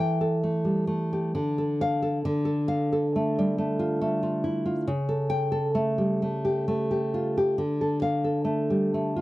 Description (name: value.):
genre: romantic piece for solo classical guitar.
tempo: 67 BPM.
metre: 3/4.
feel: rubato.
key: D minor.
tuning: A4 = 439 Hz.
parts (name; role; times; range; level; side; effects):
nylon-string guitar; solo; 0.0-9.2 s; C#3 to G5; -24 LUFS; equal; none.
room: light reverb.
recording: dry, close 1970s-style studio recording.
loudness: -24 LUFS.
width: side -17 dB against mid.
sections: 0.0-9.2 A section.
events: none.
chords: 0.0 A5/E; 1.4 Dm; 4.9 A7/C#; 7.6 Dm.